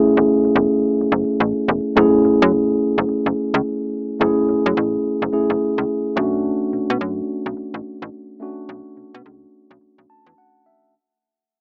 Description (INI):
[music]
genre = R&B, new jack swing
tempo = 107 BPM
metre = 4/4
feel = swing 61% on 16ths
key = F# minor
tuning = A4 = 441 Hz
[part]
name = mellow tine electric piano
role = accompaniment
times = 0.0-10.9 s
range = A3 to A5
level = -20 LUFS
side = equal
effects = none
[part]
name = slap-like FM bass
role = bass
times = 0.2-10.3 s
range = E1 to B2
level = -23 LUFS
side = equal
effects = none
[sound]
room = light reverb, digital ambience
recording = small speaker sound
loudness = -19 LUFS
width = mono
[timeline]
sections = 0.0-2.0 A section; 2.0-10.9 B section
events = fade-out 2.0-10.9; tine electric piano fill 9.8-10.9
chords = 0.0 F#m7 (rootless); 2.0 F#m7; 6.2 Bm9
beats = 0.28 0.83 1.40 | 1.96 2.52 3.08 3.64 | 4.20 4.76 5.32 5.88 | 6.44 7.00 7.56 8.12 | 8.69 9.25 9.81 10.37